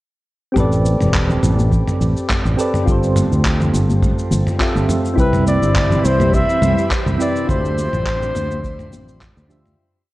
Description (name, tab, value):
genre	sunset chillout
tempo	104 BPM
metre	4/4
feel	swing 54% on 16ths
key	A minor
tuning	A4 = 440 Hz
part	soft electric-piano-like synth keys	accompaniment	0.5-9.8 s	C4 to E5	-21 LUFS	equal	chorus, auto-pan, shimmer reverb
part	fretless electric bass	bass	0.6-9.7 s	E1 to D2	-18 LUFS	equal	none
part	dusty soul sampler-style drum kit	drums	0.6-9.8 s	handclaps, shaker, toms	-22 LUFS	equal	none
part	electronic kick drum	drums	0.6-9.3 s	none	-21 LUFS	equal	none
part	congas	percussion	0.9-9.6 s	none	-26 LUFS	left 1 dB	none
part	mellow flugelhorn	melody	5.2-9.2 s	B4 to E5	-20 LUFS	equal	shimmer reverb
part	soft string machine	sustained chords	5.7-9.8 s	C3 to E5	-27 LUFS	equal	phaser, ensemble chorus, shimmer reverb
part	drifting glass-harmonics texture	texture	5.9-9.8 s	C5 to B5	-33 LUFS	equal	chorus, built-in reverb, shimmer reverb
room	light reverb, digital ambience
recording	worn, warbling old tape, cassette tape, warbly pitch drift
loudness	-14 LUFS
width	side -18 dB against mid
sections	0.6-9.8 groove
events	fade-out 6.7-9.8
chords	0.6 Am11; 2.9 G9sus4; 5.2 Cmaj7; 7.5 Dm11